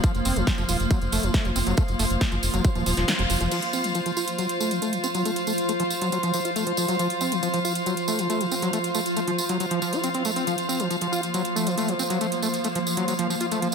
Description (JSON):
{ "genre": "psychedelic trance", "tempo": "138 BPM", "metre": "4/4", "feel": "straight", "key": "F major", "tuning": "A4 = 440 Hz", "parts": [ { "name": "swarming drone", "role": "sustained chords", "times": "0.0-13.7 s", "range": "F3 to F4", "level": "-29 LUFS", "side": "equal", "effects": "built-in reverb, sidechain pumping" }, { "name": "overdriven acid bass", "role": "riff", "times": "0.0-13.7 s", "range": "Eb3 to F4", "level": "-28 LUFS", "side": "left 1 dB", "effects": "distortion, auto-pan, sidechain pumping, tape echo" }, { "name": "big-room dance drum kit", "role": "drums", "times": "0.0-13.7 s", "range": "crash cymbal, hi-hat, snare drum", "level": "-30 LUFS", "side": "right 1 dB", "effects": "none" }, { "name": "electronic kick drum", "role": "drums", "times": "0.0-2.7 s", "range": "none", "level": "-23 LUFS", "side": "equal", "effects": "overdrive" }, { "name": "tambourine", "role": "percussion", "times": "0.0-13.7 s", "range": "none", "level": "-33 LUFS", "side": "right 3 dB", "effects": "none" }, { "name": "warm chamber string section", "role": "texture", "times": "0.0-13.7 s", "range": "F4 to F5", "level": "-28 LUFS", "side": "equal", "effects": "sidechain pumping" }, { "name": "round analog bass", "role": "bass", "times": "0.1-3.5 s", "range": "Eb1 to Gb1", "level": "-26 LUFS", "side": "equal", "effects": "none" } ], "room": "moderate lush hall reverb, RT60 2.1 s", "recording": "none", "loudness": "-22 LUFS", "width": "side -6 dB against mid", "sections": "0.0-3.5 A section; 3.5-13.7 B section", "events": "filter sweep on acid bass 0.0-3.5, 3.5-13.7; kick drops out 3.1-3.5; band accent 3.1", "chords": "0.0 F5" }